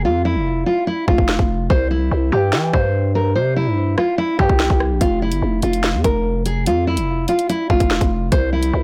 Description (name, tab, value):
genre	hip hop, drill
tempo	145 BPM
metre	4/4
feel	half-time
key	unclear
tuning	A4 = 441 Hz
part	nylon-string guitar	melody	0.0-8.8 s	E4 to C5	-22 LUFS	equal	low-pass filter, digital delay
part	growling 808-style bass	bass	0.0-8.8 s	F1 to E3	-22 LUFS	equal	none
part	drill drum kit	drums	1.1-8.7 s	hi-hat, kick drum, rim click, snare drum	-21 LUFS	equal	none
room	digital ambience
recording	blown-out, overdriven recording, overdrive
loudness	-18 LUFS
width	mono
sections	0.0-8.8 A section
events	break 0.0-5.0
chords	0.0 Fmaj7(no3); 1.7 C; 5.0 Fmaj7(no3); 8.3 C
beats	| 0.04 0.46 0.87 1.29 | 1.70 2.11 2.53 2.94 | 3.35 3.77 4.18 4.60 | 5.01 5.42 5.84 6.25 | 6.67 7.08 7.49 7.91 | 8.32 8.73